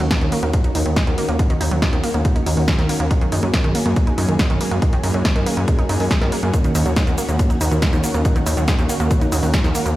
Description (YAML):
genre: uplifting trance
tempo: 140 BPM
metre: 4/4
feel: straight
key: Eb minor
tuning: A4 = 440 Hz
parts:
  - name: analog string pad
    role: sustained chords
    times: 0.0-9.9 s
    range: Eb3 to Ab4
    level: -24 LUFS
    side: left 1 dB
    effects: ensemble chorus, sidechain pumping
  - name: wide unison pluck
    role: arpeggios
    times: 0.0-9.9 s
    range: Db3 to Eb4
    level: -24 LUFS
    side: right 2 dB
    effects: sidechain pumping, digital delay
  - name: gritty driven synth bass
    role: bass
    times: 0.0-9.9 s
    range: Eb2 to Gb2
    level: -20 LUFS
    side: equal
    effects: sidechain pumping
  - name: punchy analog drum machine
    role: drums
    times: 0.0-9.9 s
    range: hi-hat, shaker, snare drum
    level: -25 LUFS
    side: equal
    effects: none
  - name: electronic kick drum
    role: drums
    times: 0.1-9.6 s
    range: none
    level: -19 LUFS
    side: equal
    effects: none
room: light reverb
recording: played on a big sound system in a bare room, stone room reverb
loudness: -16 LUFS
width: side -16 dB against mid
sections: 0.0-10.0 A section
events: none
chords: 0.0 Ebm7; 3.1 Gbadd9; 6.5 Ebm7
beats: 0.11 0.54 0.96 | 1.39 1.82 2.25 2.68 | 3.11 3.54 3.96 4.39 | 4.82 5.25 5.68 6.11 | 6.54 6.96 7.39 7.82 | 8.25 8.68 9.11 9.54